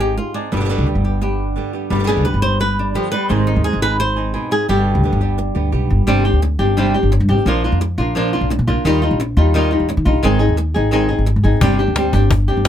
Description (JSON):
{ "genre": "flamenco", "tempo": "173 BPM", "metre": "4/4", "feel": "straight", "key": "G phrygian dominant", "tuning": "A4 = 440 Hz", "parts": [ { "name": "flamenco guitar", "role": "melody", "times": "0.0-12.7 s", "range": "G2 to C5", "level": "-18 LUFS", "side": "equal", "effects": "none" }, { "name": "flamenco guitar", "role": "stabs", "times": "0.0-6.1 s", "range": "B2 to Ab4", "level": "-26 LUFS", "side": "right 6 dB", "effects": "none" }, { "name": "upright bass", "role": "bass", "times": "0.0-12.7 s", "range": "G1 to Eb3", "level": "-17 LUFS", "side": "equal", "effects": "none" }, { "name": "cajon", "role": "percussion", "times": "11.6-12.7 s", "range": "none", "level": "-17 LUFS", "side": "left 2 dB", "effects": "none" } ], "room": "little or no reverb", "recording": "close, detailed microphones", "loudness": "-14 LUFS", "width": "side -10 dB against mid", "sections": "0.0-6.1 A section; 6.1-12.7 B section", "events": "nylon-string guitar solo 0.0-6.1", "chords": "0.0 Ab; 0.5 G; 3.3 Ab; 4.7 G; 6.1 Gsus4; 7.5 Bb; 8.8 Ebadd9; 10.2 Ab; 11.6 Gsus4", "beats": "0.18 | 0.52 0.87 1.22 1.56 | 1.91 2.26 2.60 2.95 | 3.30 3.65 3.99 4.34 | 4.69 5.03 5.38 5.73 | 6.07 6.42 6.77 7.11 | 7.46 7.81 8.15 8.50 | 8.85 9.19 9.54 9.89 | 10.23 10.58 10.93 11.27 | 11.62 11.96 12.31 12.66" }